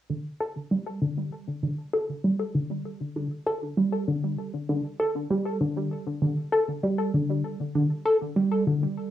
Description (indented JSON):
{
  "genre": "ambient",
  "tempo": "98 BPM",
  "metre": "4/4",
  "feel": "straight",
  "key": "unclear",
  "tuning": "A4 = 441 Hz",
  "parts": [
    { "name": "tight sequenced synth", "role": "riff", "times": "0.1-8.9 s", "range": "D3 to A4", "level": "-25 LUFS", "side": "equal", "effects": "chorus, cassette tape, analog delay" }
  ],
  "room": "wet studio reverb, RT60 0.5 s",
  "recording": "home recording on cassette",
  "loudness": "-25 LUFS",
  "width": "side -12 dB against mid",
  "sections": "0.0-9.1 A section",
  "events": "filter sweep on synth arpeggio sound 0.0-9.1",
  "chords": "none"
}